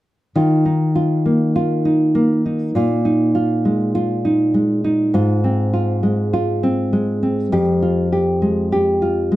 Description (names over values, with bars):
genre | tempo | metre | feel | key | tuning
pop | 100 BPM | 4/4 | straight | Eb major | A4 = 441 Hz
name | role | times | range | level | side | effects
nylon-string guitar | accompaniment | 0.4-9.4 s | F2 to G4 | -15 LUFS | equal | none
room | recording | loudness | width
moderate small room reverb, RT60 0.6 s | dark, warm production | -15 LUFS | side -16 dB against mid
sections
0.4-9.4 A section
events
none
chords
0.4 Ebsus2; 2.7 Bb7sus4; 5.1 Ab6; 7.5 Fmadd9